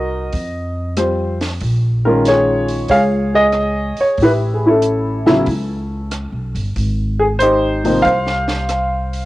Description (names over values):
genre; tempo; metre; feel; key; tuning
jazz piano trio; 93 BPM; 4/4; swing 68% on 8ths; Ab major; A4 = 440 Hz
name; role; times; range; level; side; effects
warm baby grand piano; melody; 0.0-9.3 s; C3 to F5; -15 LUFS; equal; cassette tape
upright bass; bass; 0.0-9.3 s; G1 to F2; -20 LUFS; equal; none
compact cocktail drum kit; drums; 0.3-9.2 s; hi-hat, kick drum, rim click, snare drum; -27 LUFS; right 1 dB; cassette tape
room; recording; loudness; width
light reverb, small room ambience; home recording on cassette; -14 LUFS; side -17 dB against mid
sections
0.0-9.3 A section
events
none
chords
0.3 F5; 1.6 Bbm7; 4.2 A7; 6.8 Abmaj7